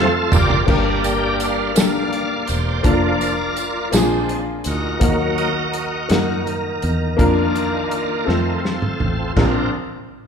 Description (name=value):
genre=slow gospel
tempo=55 BPM (dotted quarters)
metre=6/8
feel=straight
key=Bb major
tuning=A4 = 440 Hz
part: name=clear upright piano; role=accompaniment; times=0.0-9.7 s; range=Bb1 to C5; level=-22 LUFS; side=left 3 dB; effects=none
part: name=bright tonewheel organ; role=sustained chords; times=0.0-9.7 s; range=Eb3 to G5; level=-21 LUFS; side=right 1 dB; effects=slow rotary speaker, chorus vibrato
part: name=fingered electric bass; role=bass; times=0.0-9.7 s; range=E1 to Gb2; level=-24 LUFS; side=equal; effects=none
part: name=warm soul drum kit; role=drums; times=0.3-9.5 s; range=china cymbal, crash cymbal, hi-hat, kick drum, snare drum, toms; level=-20 LUFS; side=equal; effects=none
part: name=tambourine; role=percussion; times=0.3-5.0 s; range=none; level=-32 LUFS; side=right 8 dB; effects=none
room=moderate recital hall reverb, RT60 1.6 s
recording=recorded in a church or concert hall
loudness=-16 LUFS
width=side -6 dB against mid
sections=0.7-9.4 A section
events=drum fill 0.0-0.7, 8.3-9.4; tonewheel organ solo 0.7-9.4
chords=0.0 F; 0.7 Gm; 2.8 Bb/F; 3.9 Bb7; 5.0 Ebm; 7.2 Bb/F; 8.3 F; 9.4 Bbadd9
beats=| 0.68 1.76 | 2.85 3.93 | 5.01 6.10 | 7.19 8.28 | 9.37